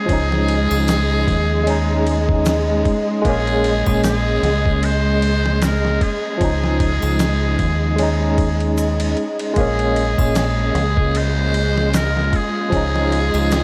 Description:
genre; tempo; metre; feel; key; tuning
trip hop; 76 BPM; 4/4; swing 57% on 16ths; Bb minor; A4 = 440 Hz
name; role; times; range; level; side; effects
trumpet with metal mute; melody; 0.0-13.6 s; Ab4 to C5; -27 LUFS; equal; vintage 12-bit sampler grit
barky tine electric piano; accompaniment; 0.0-13.6 s; F3 to Eb4; -24 LUFS; equal; tremolo
warm studio string section; sustained chords; 0.0-13.6 s; Ab3; -26 LUFS; equal; none
deep dub fingered electric bass; bass; 0.1-13.6 s; Bb1 to Eb2; -22 LUFS; equal; tube saturation
dusty soul sampler-style drum kit; drums; 0.1-13.6 s; kick drum, ride cymbal, snare drum; -26 LUFS; equal; small room ambience
triangle and tube shaker; percussion; 0.7-13.6 s; none; -39 LUFS; equal; none
bowed-like drone; texture; 11.0-13.6 s; F4; -35 LUFS; equal; built-in reverb
room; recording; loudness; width
small room ambience; vinyl crackle; -18 LUFS; mono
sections
0.0-13.6 A section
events
none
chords
0.1 Dbadd9; 1.7 Eb7sus4; 3.2 Bbm7; 6.4 Dbadd9; 8.0 Eb7sus4; 9.6 Bbm7; 12.7 Dbadd9

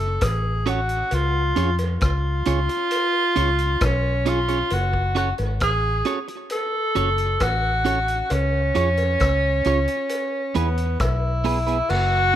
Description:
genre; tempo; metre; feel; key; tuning
roots reggae; 67 BPM; 4/4; straight; F# harmonic minor; A4 = 438 Hz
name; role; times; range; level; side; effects
clear tenor saxophone; melody; 0.0-12.4 s; B3 to A4; -22 LUFS; equal; tape echo, plate reverb
vintage muted fingered electric bass; bass; 0.0-12.4 s; F#1 to E#2; -23 LUFS; left 1 dB; none
vintage drum kit; drums; 0.2-12.1 s; crash cymbal, hi-hat, kick drum, rim click; -27 LUFS; left 1 dB; slapback echo
cowbell; percussion; 0.2-12.1 s; none; -33 LUFS; equal; none
clean electric guitar; accompaniment; 0.7-11.8 s; B3 to C#5; -26 LUFS; right 6 dB; tube saturation, tape echo, plate reverb
room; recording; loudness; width
moderate studio reverb, RT60 0.6 s; rough home demo mix; -19 LUFS; side -11 dB against mid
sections
0.0-11.9 A section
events
none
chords
0.0 F#m; 1.1 C#; 4.7 F#m; 8.3 C#; 10.1 E

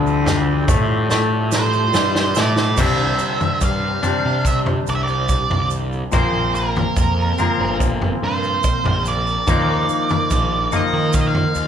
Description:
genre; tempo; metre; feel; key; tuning
psychedelic rock; 72 BPM; 4/4; straight; unclear; A4 = 436 Hz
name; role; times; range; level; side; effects
string machine, cellos; sustained chords; 0.0-11.7 s; C4 to D5; -29 LUFS; right 5 dB; phaser, ensemble chorus
semi-hollow electric guitar; riff; 0.0-11.7 s; Bb2 to Eb4; -22 LUFS; left 5 dB; none
fuzz picked electric bass; bass; 0.0-11.7 s; G1 to Eb3; -22 LUFS; right 1 dB; overdrive
tanpura; drone; 0.0-9.6 s; C2 to C3; -31 LUFS; right 1 dB; none
tube shaker; percussion; 0.1-11.7 s; none; -34 LUFS; right 10 dB; none
vintage drum kit; drums; 0.3-11.5 s; crash cymbal, kick drum, snare drum, toms; -21 LUFS; equal; none
octave-fuzz lead guitar; melody; 1.6-11.7 s; Bb4 to F5; -22 LUFS; right 4 dB; distortion
room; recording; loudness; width
light reverb; band playing live in one room; -16 LUFS; side -8 dB against mid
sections
0.0-2.8 A section; 2.8-11.7 B section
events
drum fill 1.1-2.8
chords
0.0 Dmadd9/C; 2.8 Csus2; 6.1 Bbsus2; 9.5 Ebsus2

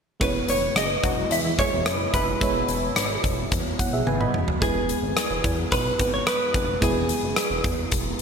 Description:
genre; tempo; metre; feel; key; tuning
1980s-style pop; 109 BPM; 4/4; straight; E major; A4 = 439 Hz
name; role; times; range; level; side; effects
direct-recorded clean electric guitar; melody; 0.2-7.9 s; G#4 to E5; -26 LUFS; equal; lush chorus
FM electric piano; accompaniment; 0.2-8.2 s; G#3 to B5; -29 LUFS; right 4 dB; chorus
sweeping resonant pad; sustained chords; 0.2-4.6 s; B2 to E4; -33 LUFS; right 2 dB; chorus
funky polysynth comp; stabs; 0.2-1.7 s; E3 to C#5; -32 LUFS; left 2 dB; chorus
chorused synth bass; bass; 0.2-8.2 s; E1 to E2; -30 LUFS; equal; none
huge arena drum kit; drums; 0.2-8.2 s; hi-hat, kick drum, rim click, toms; -25 LUFS; equal; none
room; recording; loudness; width
moderate lush hall reverb, RT60 1.7 s; bright 1980s-style digital production; -21 LUFS; side -6 dB against mid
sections
0.2-4.6 A section; 4.6-8.2 B section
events
drum fill 4.1-4.6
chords
0.2 E

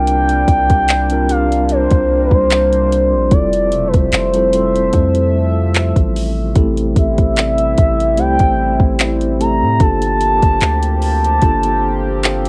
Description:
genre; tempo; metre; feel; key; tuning
contemporary R&B; 74 BPM; 4/4; swing 54% on 16ths; unclear; A4 = 440 Hz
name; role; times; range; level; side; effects
gliding portamento lead; melody; 0.0-12.5 s; B4 to Bb5; -19 LUFS; equal; chorus, cassette tape, tape echo
mellow tine electric piano; accompaniment; 0.0-12.5 s; G3 to C5; -22 LUFS; equal; cassette tape
chorused pulse-width pad; sustained chords; 0.0-12.5 s; C3 to E5; -26 LUFS; equal; sidechain pumping, cassette tape
long sustained 808-style bass; bass; 0.0-12.5 s; E1 to A2; -21 LUFS; equal; none
smooth R&B drum kit; drums; 0.1-12.5 s; handclaps, hi-hat, kick drum; -17 LUFS; equal; cassette tape
room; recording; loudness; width
light reverb; home recording on cassette; -14 LUFS; mono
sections
0.0-6.6 A section; 6.6-12.5 B section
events
none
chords
0.0 C7sus4; 3.3 Fmaj7; 6.6 Am7; 9.8 Gm9

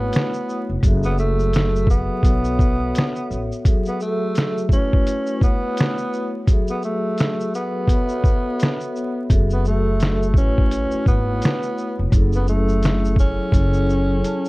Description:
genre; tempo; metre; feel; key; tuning
lo-fi hip hop; 85 BPM; 4/4; swing 60% on 16ths; F# minor; A4 = 439 Hz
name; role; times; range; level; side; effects
growling tenor saxophone; melody; 0.0-14.5 s; A3 to C#4; -24 LUFS; right 1 dB; none
vibraphone with medium mallets; accompaniment; 0.0-14.5 s; F#3 to A5; -25 LUFS; left 2 dB; cassette tape, plate reverb
upright bass; bass; 0.0-3.5, 9.3-14.2 s; E#1 to B1; -21 LUFS; equal; none
lo-fi sampler-style drum kit; drums; 0.1-14.5 s; finger snaps, hi-hat, kick drum, shaker, snare drum; -18 LUFS; equal; vintage 12-bit sampler grit
room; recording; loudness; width
light reverb; dark, warm production, vinyl crackle; -17 LUFS; side -21 dB against mid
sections
0.0-14.5 A section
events
drum fill 13.5-14.5; vibraphone fill 13.9-14.5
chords
0.0 A69; 0.8 F#m9; 2.2 B7sus4; 3.7 F#m9; 4.7 A69; 6.5 F#m9; 7.9 B7sus4; 9.3 F#m9; 10.4 A69; 12.1 F#m9

